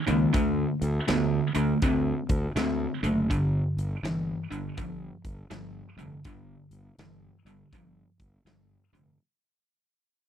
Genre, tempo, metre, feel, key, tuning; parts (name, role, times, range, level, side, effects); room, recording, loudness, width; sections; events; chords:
blues rock power trio and southern rock; 81 BPM; 4/4; swing 64% on 8ths; A4 = 436 Hz
distorted electric guitar; riff; 0.0-9.2 s; G2 to C4; -27 LUFS; equal; distortion
fuzz fingered electric bass; bass; 0.1-9.1 s; F1 to D2; -31 LUFS; equal; overdrive
big rock drum kit; drums; 0.1-9.1 s; hi-hat, kick drum, snare drum; -32 LUFS; equal
little or no reverb; dry, close 1970s-style studio recording; -24 LUFS; side -9 dB against mid
0.0-9.2 A section
fade-out 0.0-9.2
0.3 D7(no3); 3.3 G5